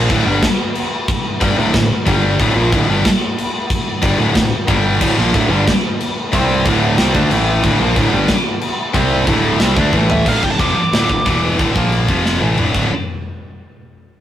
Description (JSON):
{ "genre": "heavy metal", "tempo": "183 BPM", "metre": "4/4", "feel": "straight", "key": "D minor", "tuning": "A4 = 441 Hz", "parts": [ { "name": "fuzz guitar", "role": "riff", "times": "0.0-10.3 s", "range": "D2 to D4", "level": "-20 LUFS", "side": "right 2 dB", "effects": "distortion" }, { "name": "heavy high-gain guitar", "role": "riff", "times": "0.0-12.9 s", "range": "D2 to D4", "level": "-18 LUFS", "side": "left 4 dB", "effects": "distortion" }, { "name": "growling picked electric bass", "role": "bass", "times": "0.0-12.9 s", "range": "D1 to D2", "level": "-18 LUFS", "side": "equal", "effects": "overdrive" }, { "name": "tight metal drum kit", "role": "drums", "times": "0.1-12.8 s", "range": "china cymbal, crash cymbal, kick drum, snare drum, toms", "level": "-18 LUFS", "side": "equal", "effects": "none" }, { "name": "heavy high-gain guitar", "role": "riff", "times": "5.0-12.9 s", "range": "D2 to D4", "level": "-22 LUFS", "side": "right 4 dB", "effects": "distortion" }, { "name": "bluesy overdriven lead guitar", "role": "melody", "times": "10.1-12.5 s", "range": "E5 to D6", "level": "-20 LUFS", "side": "right 1 dB", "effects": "distortion" } ], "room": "light reverb", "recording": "rough rehearsal-room recording, warm saturation", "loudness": "-13 LUFS", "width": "side -11 dB against mid", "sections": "0.0-10.3 A section; 10.3-12.9 B section; 12.9-14.2 C section", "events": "drum fill 9.9-10.3, 12.2-12.9", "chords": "0.0 D5; 2.1 G5; 2.4 Dm; 4.7 G5; 5.0 Dm; 6.3 C5; 6.7 D5; 7.3 A5; 7.6 Dm; 8.9 C5; 9.3 D5; 9.9 A5; 10.3 Dm; 11.3 E5; 11.6 D5; 11.8 Bb5; 12.1 F5; 12.4 D5; 12.9 N.C." }